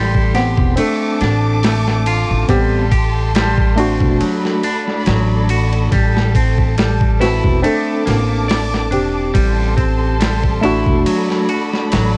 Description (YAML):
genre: trip hop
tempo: 70 BPM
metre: 4/4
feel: swing 54% on 16ths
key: A dorian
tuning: A4 = 440 Hz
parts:
  - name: warm symphonic violin section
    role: sustained chords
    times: 0.0-12.2 s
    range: G4 to D6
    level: -27 LUFS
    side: equal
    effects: none
  - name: clean electric guitar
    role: arpeggios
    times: 0.0-12.2 s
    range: F#3 to D5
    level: -23 LUFS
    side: equal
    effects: tape echo
  - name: upright bass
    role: bass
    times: 0.0-12.2 s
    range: E1 to A1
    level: -20 LUFS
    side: equal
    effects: none
  - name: boom bap sampler-style drum kit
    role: drums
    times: 0.1-12.1 s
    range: hi-hat, kick drum, ride cymbal, snare drum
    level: -22 LUFS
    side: equal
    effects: overdrive
  - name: tine electric piano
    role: accompaniment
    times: 0.3-12.2 s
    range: A3 to F#5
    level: -22 LUFS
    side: equal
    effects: tremolo, tape echo
room: digital ambience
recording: worn, warbling old tape, cassette tape, warbly pitch drift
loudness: -16 LUFS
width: mono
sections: 0.0-12.2 A section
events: none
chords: 0.0 Am7; 0.8 Amadd11; 2.5 Am7; 4.2 Bm7; 5.9 Am7; 7.6 Bbmaj7/A; 9.3 Am7; 11.1 Bm7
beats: 0.78 1.64 | 2.49 3.35 4.21 5.06 | 5.92 6.78 7.64 8.49 | 9.35 10.21 11.06 11.92